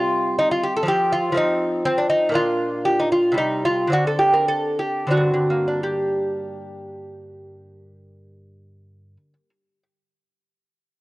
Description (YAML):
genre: classical, baroque-style dance for lute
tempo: 80-125 BPM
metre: 3/4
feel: rubato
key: G minor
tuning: A4 = 440 Hz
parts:
  - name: lute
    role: solo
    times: 0.0-9.8 s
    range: G2 to Bb4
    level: -19 LUFS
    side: equal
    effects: cassette tape
room: light reverb, small room ambience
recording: home recording on cassette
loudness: -18 LUFS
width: side -19 dB against mid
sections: 0.0-5.8 A section; 5.8-9.8 B section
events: slowing down 1.6-5.8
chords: 0.0 Cm; 0.9 F7(no3); 2.3 Bb; 3.4 Cm; 3.9 D7; 5.8 Gm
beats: 0.40 | 0.89 1.38 1.86 | 2.35 2.86 3.38 | 3.92 4.49 5.13 | 5.84 6.49 7.16 | 7.83 8.48 9.15